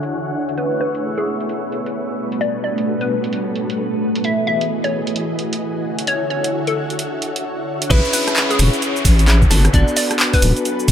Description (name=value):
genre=UK garage, two-step garage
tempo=131 BPM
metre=4/4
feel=swing 62% on 16ths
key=A major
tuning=A4 = 440 Hz
part: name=soft string machine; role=sustained chords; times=0.0-10.9 s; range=D3 to E5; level=-26 LUFS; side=left 1 dB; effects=ensemble chorus, sidechain pumping
part: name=punchy analog drum machine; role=drums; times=0.0-10.9 s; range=crash cymbal, handclaps, hi-hat, rim click, shaker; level=-20 LUFS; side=right 1 dB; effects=overdrive
part: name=granular cloud pad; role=texture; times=0.0-10.9 s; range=A3 to G#5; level=-24 LUFS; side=right 1 dB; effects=built-in reverb, sidechain pumping
part: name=hollow square pluck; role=melody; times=0.6-10.6 s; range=G#4 to E5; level=-23 LUFS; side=left 1 dB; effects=chorus, dub echo
part: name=clean electric guitar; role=stabs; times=7.9-10.9 s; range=B3 to C#5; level=-22 LUFS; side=left 1 dB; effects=none
part: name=deep soft wobble bass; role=bass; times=7.9-10.9 s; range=D1 to A1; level=-13 LUFS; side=equal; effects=chorus
part: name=electronic kick drum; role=drums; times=7.9-10.9 s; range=none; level=-15 LUFS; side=equal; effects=none
part: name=downlifter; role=sound effects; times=7.9-10.9 s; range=none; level=-25 LUFS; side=equal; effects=none
room=light reverb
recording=low-pass filter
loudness=-16 LUFS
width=side -9 dB against mid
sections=0.0-7.9 A section; 7.9-10.9 B section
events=filter sweep on string machine 0.0-7.9; filter sweep 0.0-7.9; drop 7.9-10.9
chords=0.0 Dmaj9; 0.6 Amaj9; 2.2 Gmaj9; 4.2 Emaj9; 5.8 Dmaj9; 7.9 Amaj9; 9.5 Gmaj9